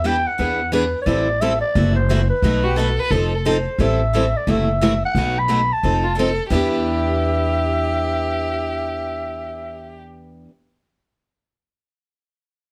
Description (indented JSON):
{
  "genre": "acoustic string swing (jazz manouche)",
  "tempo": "176 BPM",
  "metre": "4/4",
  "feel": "swing 60% on 8ths",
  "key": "E minor",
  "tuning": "A4 = 440 Hz",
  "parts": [
    { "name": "growling clarinet", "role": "melody", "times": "0.0-10.0 s", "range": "B4 to B5", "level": "-24 LUFS", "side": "equal", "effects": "none" },
    { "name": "picked steel-string acoustic guitar", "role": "accompaniment", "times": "0.0-10.5 s", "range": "B2 to A4", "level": "-25 LUFS", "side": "equal", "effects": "none" },
    { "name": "picked steel-string acoustic guitar", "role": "accompaniment", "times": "0.0-10.5 s", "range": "B2 to B4", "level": "-32 LUFS", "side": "equal", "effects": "none" },
    { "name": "upright bass", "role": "bass", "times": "0.0-10.4 s", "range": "F1 to E2", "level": "-24 LUFS", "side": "equal", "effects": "none" },
    { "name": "warm violin", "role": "second line", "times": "2.6-3.4, 6.0-10.0 s", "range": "F4 to B4", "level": "-28 LUFS", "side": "equal", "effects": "none" }
  ],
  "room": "light reverb",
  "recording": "none",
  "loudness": "-19 LUFS",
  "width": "mono",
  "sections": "0.0-1.1 A section; 1.1-6.5 B section; 6.5-9.2 C section",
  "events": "none",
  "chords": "0.4 E7; 1.1 Am7; 1.7 F#m7b5; 2.4 B7; 3.1 F7; 3.8 Am7; 4.5 F#m7b5; 5.1 B7; 5.8 F7; 6.5 Em7"
}